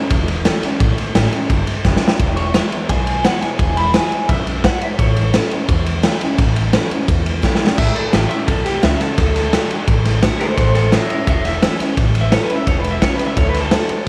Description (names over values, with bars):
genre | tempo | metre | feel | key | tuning
rockabilly | 172 BPM | 4/4 | straight | A major | A4 = 440 Hz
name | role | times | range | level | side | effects
electric guitar through a small old amp | melody | 0.0-0.2, 2.4-14.1 s | G4 to B5 | -24 LUFS | equal | subtle chorus, tape echo
picked steel-string acoustic guitar | accompaniment | 0.0-14.1 s | E2 to F#4 | -26 LUFS | equal | none
upright bass | bass | 0.1-13.9 s | E1 to E2 | -22 LUFS | equal | none
raw garage drum kit | drums | 0.1-14.0 s | crash cymbal, kick drum, ride cymbal, snare drum | -19 LUFS | equal | none
room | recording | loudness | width
light reverb, small room ambience | none | -16 LUFS | mono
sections
0.0-7.8 A section; 7.8-14.1 B section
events
drum fill 1.8-2.2, 7.4-7.8; clean electric guitar solo 7.8-14.1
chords
0.0 A; 2.2 E; 5.0 A; 9.2 D; 10.6 A; 13.4 D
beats
0.11 0.45 | 0.80 1.15 1.50 1.85 | 2.20 2.55 2.90 3.24 | 3.59 3.94 4.29 4.64 | 4.99 5.34 5.69 6.04 | 6.38 6.73 7.08 7.43 | 7.78 8.13 8.48 8.83 | 9.18 9.53 9.88 10.23 | 10.57 10.93 11.27 11.62 | 11.97 12.32 12.67 13.02 | 13.37 13.72 14.07